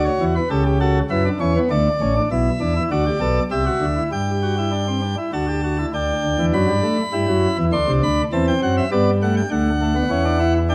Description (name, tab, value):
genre	classical, baroque-style 3-part fugue for pipe organ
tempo	100 BPM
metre	3/4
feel	straight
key	unclear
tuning	A4 = 445 Hz
part	chamber organ, principal chorus	solo	0.0-10.7 s	A1 to C6	-20 LUFS	equal	none
room	moderate recital hall reverb, RT60 1.4 s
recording	none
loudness	-20 LUFS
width	mono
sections	0.0-2.3 A section; 2.3-5.9 B section; 5.9-10.7 C section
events	none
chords	0.0 E5/D; 0.5 A7/C#; 1.7 D5; 2.3 Bm; 3.5 C; 4.1 Dsus4/G; 5.3 D; 5.9 G/D; 7.1 Emadd9; 7.7 D7; 8.9 G; 9.5 D